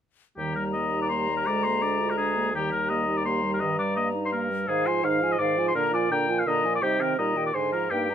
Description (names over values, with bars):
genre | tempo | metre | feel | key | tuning
quick classical-period movement for wind quintet | 167 BPM | 3/4 | straight | Eb major | A4 = 440 Hz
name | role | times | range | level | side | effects
bright concert flute | melody | 0.4-8.1 s | Eb5 to Bb5 | -31 LUFS | left 7 dB | none
warm oboe | second line | 0.4-8.1 s | G4 to G5 | -27 LUFS | left 3 dB | none
clear French horn | accompaniment | 0.4-8.1 s | D3 to Bb3 | -34 LUFS | right 1 dB | none
warm clarinet | accompaniment | 0.4-8.1 s | Eb3 to G4 | -33 LUFS | right 7 dB | none
mellow bassoon | bass | 0.4-8.1 s | D2 to C3 | -29 LUFS | right 3 dB | none
room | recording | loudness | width
light reverb | minimal, uncompressed stereo recording | -23 LUFS | side -9 dB against mid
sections
0.4-8.1 A section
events
none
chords
0.4 Eb; 1.5 Bb7/D; 2.5 Eb; 3.6 Eb/G; 4.7 Fm7/Ab; 5.7 Bb7; 6.8 Cm; 7.2 Eb/Bb; 7.5 Bb7/Ab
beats
| 0.38 0.74 1.10 | 1.46 1.82 2.18 | 2.54 2.90 3.26 | 3.61 3.97 4.32 | 4.68 5.04 5.39 | 5.75 6.11 6.47 | 6.83 7.18 7.55 | 7.92